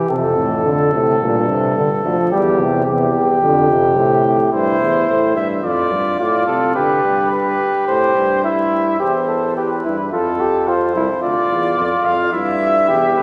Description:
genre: classical, imitative canzona for brass ensemble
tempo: 108 BPM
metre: 4/4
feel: straight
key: unclear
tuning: A4 = 440 Hz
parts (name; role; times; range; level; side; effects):
- warm flugelhorn; second line; 0.0-13.2 s; E4 to A4; -20 LUFS; equal; none
- warm trombone; accompaniment; 0.0-4.5 s; A2 to G3; -22 LUFS; equal; none
- mellow euphonium; bass; 0.1-13.2 s; C2 to D3; -23 LUFS; equal; none
- clear trumpet; melody; 4.5-13.2 s; A4 to F5; -21 LUFS; equal; none
room: wet church reverb, RT60 3.0 s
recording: vinyl crackle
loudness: -16 LUFS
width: mono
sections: 0.0-9.0 A section; 9.0-13.2 B section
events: none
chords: 0.1 F; 1.2 Gm; 2.3 C/E; 3.4 F; 4.5 C; 5.6 Dm/F; 6.8 G; 7.9 C; 9.0 C/E; 10.1 F; 11.2 Dmadd9; 12.3 Em/G

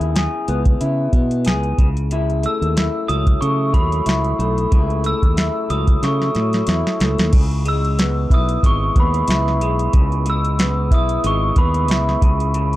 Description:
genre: indie pop, bedroom pop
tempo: 92 BPM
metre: 4/4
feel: swing 55% on 16ths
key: C# minor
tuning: A4 = 440 Hz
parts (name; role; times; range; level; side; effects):
- electric guitar through a small old amp; accompaniment; 0.0-12.8 s; C#3 to G#4; -23 LUFS; left 2 dB; wide subtle chorus, warbly pitch drift
- fingered electric bass; bass; 0.0-12.8 s; G#1 to C#3; -20 LUFS; equal; none
- soft vintage rhythm box; drums; 0.0-12.8 s; crash cymbal, hi-hat, kick drum, snare drum; -16 LUFS; equal; overdrive
- glockenspiel with soft plastic mallets; melody; 2.5-12.2 s; B5 to E6; -23 LUFS; right 1 dB; analog chorus, analog delay
room: little or no reverb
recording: dry, gritty hardware recording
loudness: -15 LUFS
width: side -16 dB against mid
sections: 0.0-7.3 A section; 7.3-12.8 B section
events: drum fill 6.0-7.3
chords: 0.0 C#m7; 1.8 F#m7; 7.3 C#m7; 12.2 F#7(no3) (rootless)

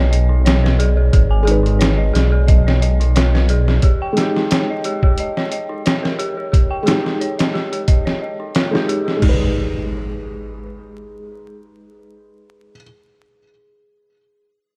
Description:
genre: trip hop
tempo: 89 BPM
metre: 4/4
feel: swing 54% on 16ths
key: G# harmonic minor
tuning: A4 = 440 Hz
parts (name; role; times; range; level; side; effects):
- felt-muted upright piano; accompaniment; 0.0-12.8 s; G#3 to B4; -26 LUFS; equal; harmonic tremolo, low-pass filter, tape echo
- dark detuned synth bell; arpeggios; 0.0-14.4 s; D#4 to G#5; -27 LUFS; equal; chorus, vintage 12-bit sampler grit, low-pass filter, tape echo
- dark detuned saw bass; bass; 0.0-3.8 s; G#1 to B1; -16 LUFS; equal; tube saturation
- impact; sound effects; 0.0-1.1, 9.2-12.8 s; none; -26 LUFS; equal; none
- trip hop sampler-style drum kit; drums; 0.1-9.4 s; crash cymbal, hi-hat, kick drum, snare drum; -19 LUFS; equal; none
room: light reverb, digital ambience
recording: dark, warm production, vinyl crackle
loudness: -17 LUFS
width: mono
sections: 0.0-9.2 A section; 9.2-11.9 B section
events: impact 0.0-1.1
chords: 0.0 G#m; 3.8 D#/G#; 9.2 G#m

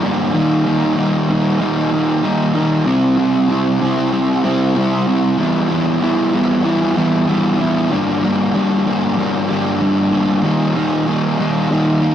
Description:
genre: rock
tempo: 95 BPM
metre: 4/4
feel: straight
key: unclear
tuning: A4 = 440 Hz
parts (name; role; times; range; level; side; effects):
- fuzz guitar; solo; 0.0-12.1 s; G2 to E4; -14 LUFS; equal; distortion
room: wet small room reverb, RT60 0.6 s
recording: rough rehearsal-room recording, warm saturation, cassette tape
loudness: -14 LUFS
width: side -10 dB against mid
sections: 0.0-12.1 A section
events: none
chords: 0.3 Eb; 2.9 C; 5.4 Em; 7.9 Gm; 10.5 Eb

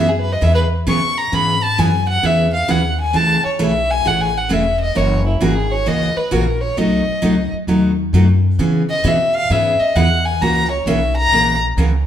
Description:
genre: country, western swing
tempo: 132 BPM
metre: 4/4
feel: swing 66% on 8ths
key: unclear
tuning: A4 = 441 Hz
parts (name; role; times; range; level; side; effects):
- dark fiddle; melody; 0.0-11.6 s; E4 to C#6; -17 LUFS; left 1 dB; none
- picked steel-string acoustic guitar; accompaniment; 0.0-11.9 s; B2 to G#4; -18 LUFS; right 1 dB; none
- upright bass; bass; 0.0-12.1 s; E1 to C#3; -19 LUFS; equal; none
room: moderate large studio reverb, RT60 1.2 s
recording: band playing live in one room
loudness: -14 LUFS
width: side -10 dB against mid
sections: 0.0-12.1 A section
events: fiddle solo 0.0-12.1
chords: 0.0 C#m7; 1.3 C#m11; 3.1 Amaj7; 5.0 F#7; 6.8 B7; 8.6 C#m7; 10.4 F#7

